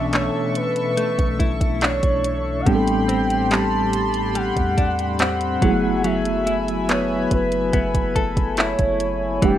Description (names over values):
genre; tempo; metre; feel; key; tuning
contemporary R&B; 71 BPM; 4/4; straight; unclear; A4 = 440 Hz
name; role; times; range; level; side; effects
gliding portamento lead; melody; 0.0-9.6 s; B4 to A5; -24 LUFS; equal; chorus
mellow tine electric piano; accompaniment; 0.0-9.6 s; E3 to A4; -24 LUFS; right 2 dB; medium stereo tremolo
chorused pulse-width pad; sustained chords; 0.0-9.6 s; A3 to C#6; -28 LUFS; equal; sidechain pumping
direct-recorded clean electric guitar; arpeggios; 0.0-9.6 s; A2 to A4; -25 LUFS; left 4 dB; tremolo
long sustained 808-style bass; bass; 0.0-9.6 s; E1 to E2; -28 LUFS; equal; none
downlifter; sound effects; 0.0-2.7 s; none; -41 LUFS; right 1 dB; none
smooth R&B drum kit; drums; 0.1-9.6 s; handclaps, hi-hat, kick drum; -21 LUFS; equal; none
room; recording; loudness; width
moderate studio reverb, RT60 0.7 s; rough home demo mix; -18 LUFS; side -11 dB against mid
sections
0.0-9.6 A section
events
none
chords
0.0 Bm11; 2.7 Am11; 5.6 F#m11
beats
0.13 0.97 1.82 | 2.66 3.51 4.35 5.20 | 6.04 6.89 7.73 8.58 | 9.42